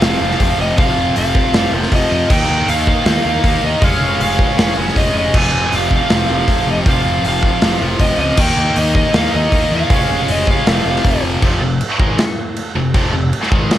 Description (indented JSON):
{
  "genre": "hard rock",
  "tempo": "158 BPM",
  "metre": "4/4",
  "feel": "straight",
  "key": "F minor",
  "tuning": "A4 = 440 Hz",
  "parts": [
    { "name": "smooth overdriven lead guitar", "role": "melody", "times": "0.0-11.2 s", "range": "Eb5 to Ab5", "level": "-19 LUFS", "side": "equal", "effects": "tape echo" },
    { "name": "distorted electric guitar", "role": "riff", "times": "0.0-11.4 s", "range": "F2 to Eb4", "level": "-23 LUFS", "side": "equal", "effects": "overdrive, cassette tape" },
    { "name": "heavy high-gain guitar", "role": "riff", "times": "0.0-13.7 s", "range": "F2 to Eb4", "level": "-19 LUFS", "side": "equal", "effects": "distortion, cassette tape" },
    { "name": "fuzz picked electric bass", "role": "bass", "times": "0.0-13.7 s", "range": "F1 to F2", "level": "-21 LUFS", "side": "equal", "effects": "overdrive" },
    { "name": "big rock drum kit", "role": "drums", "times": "0.0-13.8 s", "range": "crash cymbal, hi-hat, kick drum, snare drum", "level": "-17 LUFS", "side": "equal", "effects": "cassette tape" }
  ],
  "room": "studio reverb",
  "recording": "home recording on cassette",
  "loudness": "-12 LUFS",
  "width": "side -12 dB against mid",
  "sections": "0.0-11.4 A section; 11.4-13.8 B section",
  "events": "none",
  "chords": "0.0 F5; 2.3 Eb; 3.8 Db/F; 5.3 F5; 8.4 Eb; 9.9 Db/F; 10.7 F5; 11.4 Fm",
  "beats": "0.02 0.41 | 0.79 1.17 1.55 1.93 | 2.31 2.69 3.07 3.45 | 3.83 4.21 4.59 4.97 | 5.35 5.73 6.11 6.49 | 6.87 7.25 7.63 8.01 | 8.39 8.77 9.15 9.53 | 9.91 10.29 10.67 11.05 | 11.43 11.81 12.19 12.57 | 12.95 13.33 13.71"
}